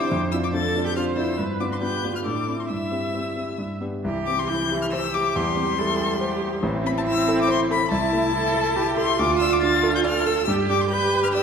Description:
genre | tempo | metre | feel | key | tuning
quick classical-period movement for piano quartet | 140 BPM | 3/4 | rubato | C major | A4 = 444 Hz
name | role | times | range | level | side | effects
warm violin | melody | 0.0-11.4 s | A5 to A6 | -26 LUFS | left 7 dB | none
dark cello | second line | 0.0-11.4 s | C4 to B4 | -26 LUFS | right 4 dB | none
rich viola | accompaniment | 0.0-11.4 s | E3 to E5 | -29 LUFS | right 2 dB | none
warm grand piano | accompaniment | 0.0-11.4 s | A1 to D5 | -25 LUFS | equal | none
room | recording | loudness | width
wet concert hall reverb, RT60 1.9 s | minimal, uncompressed stereo recording | -20 LUFS | side -6 dB against mid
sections
0.0-4.0 A section; 4.0-11.4 B section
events
none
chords
0.1 Dm7/F; 1.4 G7; 2.3 Am; 2.7 C/G; 3.6 G; 4.0 C; 5.4 C/E; 6.6 Am; 7.9 Am/C; 9.2 Dm; 10.5 G

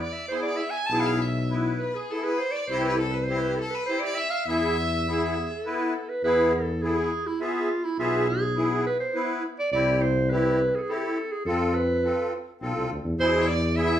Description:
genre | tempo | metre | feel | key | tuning
klezmer | 103 BPM | 3/4 | straight | E phrygian dominant | A4 = 439 Hz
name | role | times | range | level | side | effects
breathy clarinet | melody | 0.0-14.0 s | E4 to A5 | -27 LUFS | right 2 dB | none
clear violin | second line | 0.0-5.6, 13.2-14.0 s | G#4 to A5 | -32 LUFS | left 3 dB | none
mellow tuba | bass | 0.0-14.0 s | B1 to F2 | -28 LUFS | left 1 dB | none
musette accordion | accompaniment | 0.3-14.0 s | B2 to E5 | -28 LUFS | left 1 dB | none
room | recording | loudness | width
wet large studio reverb, RT60 0.8 s | band playing live in one room | -23 LUFS | side -10 dB against mid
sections
0.0-6.2 A section; 6.2-14.0 A section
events
speeding up 0.0-14.0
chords
0.0 E; 2.7 C; 4.5 E; 9.7 C; 11.5 F; 13.2 E

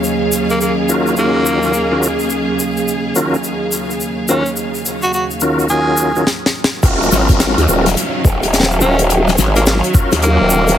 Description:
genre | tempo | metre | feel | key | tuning
glitch hop | 106 BPM | 4/4 | swing 62% on 16ths | Eb minor | A4 = 437 Hz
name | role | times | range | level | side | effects
bright studio string section | sustained chords | 0.0-10.8 s | Eb2 to F5 | -20 LUFS | right 2 dB | sidechain pumping, low-pass filter
egg shaker | percussion | 0.0-10.8 s | none | -22 LUFS | left 2 dB | none
warbly tape-like pad | texture | 0.0-10.8 s | Gb3 to F5 | -24 LUFS | equal | chorus, built-in reverb, sidechain pumping
raspy tenor saxophone | melody | 0.5-10.8 s | Bb3 to Ab4 | -19 LUFS | equal | digital delay
tonewheel organ | stabs | 0.9-10.8 s | Eb3 to Bb4 | -19 LUFS | equal | chorus vibrato, fast rotary speaker, vintage 12-bit sampler grit, sidechain pumping, digital delay
tight funk drum kit | drums | 6.3-10.8 s | hi-hat, snare drum | -17 LUFS | left 3 dB | none
growl bass | bass | 6.8-10.8 s | Eb1 to Eb2 | -14 LUFS | equal | chorus
electronic kick drum | drums | 6.8-10.1 s | none | -12 LUFS | equal | none
downlifter | sound effects | 6.8-10.8 s | none | -23 LUFS | left 1 dB | none
room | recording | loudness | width
moderate lush hall reverb, RT60 2.2 s | heavily compressed radio sound | -12 LUFS | side -10 dB against mid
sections
0.0-6.8 A section; 6.8-10.8 B section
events
drum fill 6.3-6.8; stop 6.3-6.8; drop 6.8-10.8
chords
0.0 Ebm9

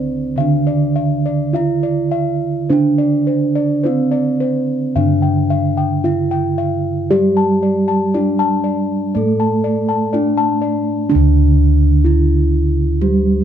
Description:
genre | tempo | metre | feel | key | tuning
Javanese gamelan | 52-63 BPM | 4/4 | straight | D slendro | A4 = 439 Hz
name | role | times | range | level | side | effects
gamelan-type bronze metallophone | melody | 0.0-13.4 s | C4-25c to A4 | -19 LUFS | right 2 dB | none
gamelan-type bronze metallophone | accompaniment | 0.0-13.4 s | D3 to A3 | -19 LUFS | right 4 dB | none
gamelan-type bossed gongs | arpeggios | 0.0-10.9 s | C5-25c to A5 | -23 LUFS | left 7 dB | none
gamelan-type bossed gongs | bass | 0.0-13.4 s | D2 to G4 | -18 LUFS | left 1 dB | none
room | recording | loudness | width
light reverb | close, detailed microphones | -13 LUFS | side -9 dB against mid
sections
0.0-11.1 A section; 11.1-13.4 B section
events
none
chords
none

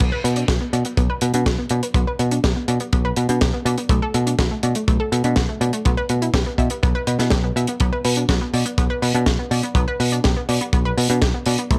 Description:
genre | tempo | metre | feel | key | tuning
italo disco | 123 BPM | 4/4 | straight | B minor | A4 = 437 Hz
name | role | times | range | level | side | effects
analog pluck | arpeggios | 0.0-11.8 s | A3 to E5 | -28 LUFS | equal | chorus, analog delay
picked electric bass | bass | 0.0-11.8 s | B1 to B2 | -23 LUFS | equal | tube saturation
kick drum | drums | 0.0-11.8 s | none | -23 LUFS | equal | none
tight funk drum kit | drums | 0.0-11.8 s | crash cymbal, hi-hat, snare drum | -28 LUFS | equal | none
room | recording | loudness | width
small room reverb | dry, gritty hardware recording | -20 LUFS | mono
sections
0.0-11.8 A section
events
none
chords
0.0 Bm; 1.9 G/B; 3.9 D/B; 5.9 Em/B; 7.8 Bm; 9.8 G/B

